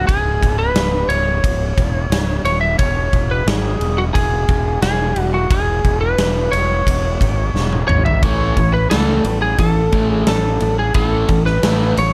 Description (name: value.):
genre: hard rock.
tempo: 88 BPM.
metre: 4/4.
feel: straight.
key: unclear.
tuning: A4 = 440 Hz.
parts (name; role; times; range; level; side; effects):
lightly driven lead guitar; melody; 0.0-12.1 s; F#4 to E5; -22 LUFS; equal; none.
fuzz fingered electric bass; bass; 0.0-12.1 s; C#1 to C#2; -22 LUFS; equal; overdrive.
huge arena drum kit; drums; 0.1-12.1 s; kick drum, ride cymbal, snare drum, toms; -22 LUFS; equal; none.
crunchy overdriven guitar; riff; 8.2-12.1 s; A2 to A3; -22 LUFS; equal; none.
room: small room ambience.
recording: none.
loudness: -17 LUFS.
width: mono.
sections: 0.0-12.1 A section.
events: drum fill 7.6-8.2.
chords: 0.0 N.C.; 2.8 E; 8.2 A5.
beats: | 0.08 0.76 1.44 2.11 | 2.79 3.47 4.15 4.83 | 5.51 6.19 6.87 7.55 | 8.23 8.91 9.59 10.27 | 10.96 11.64.